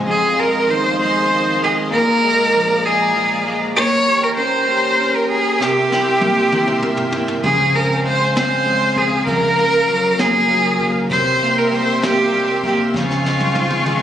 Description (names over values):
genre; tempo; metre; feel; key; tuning
six-eight pop ballad; 65 BPM (dotted quarters); 6/8; straight; F minor; A4 = 439 Hz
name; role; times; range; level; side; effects
electric guitar at the edge of break-up; accompaniment; 0.0-14.0 s; F2 to G4; -21 LUFS; equal; double-tracked left and right
clear symphonic string section; sustained chords; 0.0-14.0 s; C4 to Db6; -25 LUFS; left 1 dB; none
vintage muted fingered electric bass; bass; 0.0, 7.4-14.0 s; C2 to Db2; -28 LUFS; equal; none
rich cello; melody; 0.1-14.0 s; F4 to Db5; -16 LUFS; right 1 dB; none
jazz brush drum kit; drums; 5.6-14.0 s; kick drum, ride cymbal, snare drum, toms; -26 LUFS; equal; none
picked steel-string acoustic guitar; arpeggios; 7.4-14.0 s; E3 to Ab4; -27 LUFS; equal; none
room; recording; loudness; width
light reverb, small room ambience; recorded on a phone in the room, club reverb; -14 LUFS; side -10 dB against mid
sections
0.1-14.0 A section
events
drum fill 5.6-7.4, 12.9-14.0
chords
0.1 Fm7; 1.9 Bb7; 3.8 Gdim/Bb; 5.6 C7; 7.4 Dbmaj7; 9.3 Gbmaj7/Db; 11.1 C7; 12.9 Dbmaj7